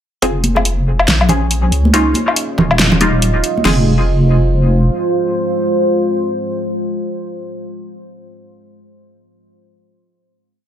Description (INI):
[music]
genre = deep dubstep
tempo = 140 BPM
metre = 4/4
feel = swing 60% on 16ths, half-time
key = F minor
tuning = A4 = 442 Hz
[part]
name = deep dark ambient pad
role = sustained chords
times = 1.0-7.8 s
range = Ab3 to C5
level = -19 LUFS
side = right 1 dB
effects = chorus, built-in reverb
[part]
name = filtered dub chord stab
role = stabs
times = 0.2-8.0 s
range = G3 to Ab4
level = -19 LUFS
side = left 1 dB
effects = phaser, lush chorus, dub echo
[part]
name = deep soft wobble bass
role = bass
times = 0.2-4.9 s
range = Eb1 to Db2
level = -14 LUFS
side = equal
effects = chorus, tube saturation
[part]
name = deep house drum kit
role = drums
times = 0.2-3.8 s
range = crash cymbal, kick drum, snare drum, toms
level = -18 LUFS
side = right 1 dB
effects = overdrive, high-pass filter on kick, high-pass filter on snare, high-pass filter on toms, high-pass filter on cymbals
[part]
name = deep house drum kit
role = drums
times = 0.2-3.5 s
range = hi-hat, snare drum, woodblock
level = -15 LUFS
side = left 1 dB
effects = overdrive
[part]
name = congas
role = percussion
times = 0.4-3.6 s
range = none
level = -18 LUFS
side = right 2 dB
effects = dub echo
[sound]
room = light reverb, digital ambience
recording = none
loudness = -12 LUFS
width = side -10 dB against mid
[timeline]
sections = 0.2-3.7 build; 3.7-7.1 final chord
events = build-up 0.2-3.7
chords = 0.2 Fm; 1.1 Bbm7; 1.9 Dbadd9; 2.8 Ebadd9; 3.7 Fm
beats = | 0.22 0.65 1.08 1.51 | 1.94 2.37 2.79 3.22 | 3.65 4.08 4.51 4.94 | 5.37 5.79 6.22 6.65